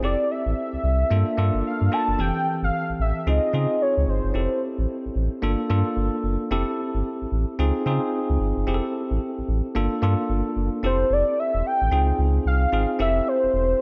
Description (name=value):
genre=R&B, new jack swing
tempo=111 BPM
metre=4/4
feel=swing 62% on 16ths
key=F major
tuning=A4 = 440 Hz
part: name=warm velvety synth lead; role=melody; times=0.0-4.6, 10.9-13.8 s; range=C5 to A5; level=-26 LUFS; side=equal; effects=chorus, tape echo
part: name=bell-like tine electric piano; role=accompaniment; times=0.0-13.8 s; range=E3 to A4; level=-29 LUFS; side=equal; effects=none
part: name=sub bass with octave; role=bass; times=0.0-13.7 s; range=E1 to Db3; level=-25 LUFS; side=equal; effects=none
room=light reverb, digital ambience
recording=none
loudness=-23 LUFS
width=mono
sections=0.0-2.2 A section; 2.2-10.8 B section; 10.8-13.8 C section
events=none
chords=0.0 Fmaj7; 1.1 Gm7; 2.2 Fmaj7; 3.3 Dbmaj7; 4.3 Fmaj7; 5.4 Gm7; 6.5 Fmaj7; 7.6 Dbmaj7; 8.7 Fmaj7; 9.8 Gm7; 10.8 Fmaj7; 11.9 Dbmaj7; 13.0 Fmaj7